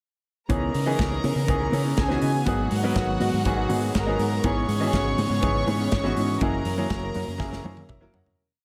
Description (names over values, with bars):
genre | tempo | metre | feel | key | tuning
disco | 122 BPM | 4/4 | straight | C# dorian | A4 = 441 Hz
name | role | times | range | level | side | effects
warm studio string section | second line | 0.5-8.3 s | F#4 to C#6 | -33 LUFS | equal | none
clear baby grand piano | accompaniment | 0.5-8.4 s | E3 to F#5 | -31 LUFS | equal | none
mellow electric guitar | accompaniment | 0.5-8.3 s | A#3 to F#5 | -33 LUFS | equal | none
dark studio string section | sustained chords | 0.5-8.4 s | C#3 to F#4 | -33 LUFS | equal | none
fingered electric bass | bass | 0.5-8.3 s | F#1 to C#3 | -30 LUFS | equal | none
modern studio drum kit | drums | 0.5-8.4 s | hi-hat, kick drum, snare drum, toms | -32 LUFS | equal | none
room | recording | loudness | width
light reverb, small room reverb | none | -24 LUFS | mono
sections
0.5-8.4 verse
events
fade-out 6.4-8.4; drum fill 7.4-8.4; grand piano fill 7.4-8.4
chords
0.5 C#m7; 2.5 G#m9; 4.4 C#m7/G#; 6.4 F#7